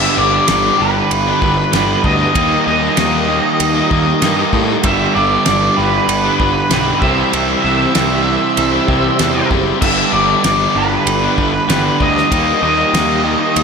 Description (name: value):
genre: classic rock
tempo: 96 BPM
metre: 4/4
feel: straight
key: G major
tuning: A4 = 440 Hz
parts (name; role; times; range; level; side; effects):
- octave-fuzz lead guitar; melody; 0.0-13.6 s; B4 to E5; -16 LUFS; equal; distortion, slapback echo
- tonewheel organ; sustained chords; 0.0-13.6 s; Eb4 to C5; -26 LUFS; equal; overdrive, chorus vibrato, fast rotary speaker
- crunchy overdriven guitar; riff; 0.0-13.6 s; G2 to G4; -19 LUFS; right 10 dB; none
- crunchy overdriven guitar; riff; 0.0-13.6 s; G2 to Eb4; -22 LUFS; equal; none
- distorted electric guitar; riff; 0.0-13.6 s; G2 to E4; -20 LUFS; left 12 dB; distortion
- fuzz picked electric bass; bass; 0.0-13.6 s; F#1 to A2; -21 LUFS; left 1 dB; overdrive
- damped 70s drum kit; drums; 0.5-13.6 s; crash cymbal, kick drum, ride cymbal, snare drum; -20 LUFS; equal; none
room: moderate lush hall reverb, RT60 2.4 s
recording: big arena sound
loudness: -11 LUFS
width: side -5 dB against mid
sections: 0.0-13.6 A section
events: none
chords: 0.0 G6; 2.4 Eb; 4.8 G6; 7.0 C; 9.8 G6; 12.3 Eb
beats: 0.49 1.11 1.73 | 2.36 2.98 3.60 4.22 | 4.85 5.47 6.09 6.71 | 7.34 7.96 8.58 9.20 | 9.83 10.45 11.07 11.70 | 12.32 12.94 13.56